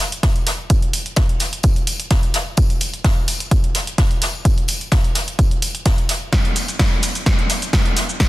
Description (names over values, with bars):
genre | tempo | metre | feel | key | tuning
house | 128 BPM | 4/4 | straight | none | none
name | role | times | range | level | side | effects
jazz brush drum kit | drums | 0.0-8.3 s | hi-hat, snare drum, tambourine | -26 LUFS | left 2 dB | high-pass filter on hats, high-pass filter on snare, high-pass filter on perc, high-pass filter on room
punchy analog drum machine | drums | 0.0-8.3 s | hi-hat, shaker, snare drum | -22 LUFS | right 1 dB | soft clipping on snare
electronic kick drum | drums | 0.2-8.3 s | none | -17 LUFS | equal | none
room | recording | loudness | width
light reverb | dense, heavily limited modern master | -16 LUFS | side -17 dB against mid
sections
0.0-8.3 A section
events
build-up 0.0-8.3; drum fill 6.3-8.3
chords
none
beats
0.23 | 0.70 1.17 1.64 2.11 | 2.58 3.04 3.51 3.98 | 4.45 4.92 5.39 5.86 | 6.33 6.79 7.26 7.73 | 8.20